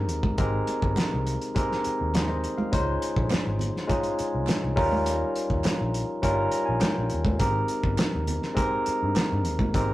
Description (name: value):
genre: lush 1970s-style soul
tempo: 103 BPM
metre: 4/4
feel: straight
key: Ab major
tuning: A4 = 440 Hz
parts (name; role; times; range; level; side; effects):
- barky tine electric piano; accompaniment; 0.0-9.9 s; G3 to Bb5; -27 LUFS; equal; none
- vintage muted fingered electric bass; bass; 0.0-9.9 s; G1 to G2; -29 LUFS; equal; none
- cloth-damped thuddy drum kit; drums; 0.1-9.9 s; hi-hat, kick drum, snare drum; -28 LUFS; equal; none
- congas; percussion; 0.2-9.9 s; none; -33 LUFS; right 1 dB; none
- group handclap; percussion; 3.3-9.3 s; none; -42 LUFS; right 4 dB; none
room: moderate studio reverb, RT60 0.5 s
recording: rough rehearsal-room recording, tube saturation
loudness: -23 LUFS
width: side -16 dB against mid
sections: 0.0-9.9 A section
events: tine electric piano fill 6.2-7.4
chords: 0.0 Abmaj9; 2.7 Dbmaj9; 4.8 Eb9; 7.4 Abmaj9